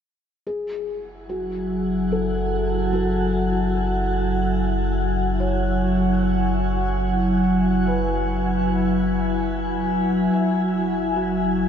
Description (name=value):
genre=ambient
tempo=73 BPM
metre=3/4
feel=straight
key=F# minor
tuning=A4 = 440 Hz
part: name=glassy FM pad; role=sustained chords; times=1.4-11.7 s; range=F#3 to G#5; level=-21 LUFS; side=equal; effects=ensemble chorus, built-in reverb
part: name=felt-muted upright piano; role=arpeggios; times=0.5-11.7 s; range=F#4 to E5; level=-29 LUFS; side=left 1 dB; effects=ping-pong delay
part: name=warm sub bass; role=bass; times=0.5-11.7 s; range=F#1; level=-27 LUFS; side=right 1 dB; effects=tube saturation
room=wet shimmer reverb, RT60 8.8 s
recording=nothing above 7.4 kHz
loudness=-20 LUFS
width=side -8 dB against mid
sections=0.5-11.7 A section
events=none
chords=0.5 F#m9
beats=| 0.47 1.29 2.11 | 2.94 3.76 4.58 | 5.40 6.22 7.04 | 7.87 8.69 9.51 | 10.33 11.15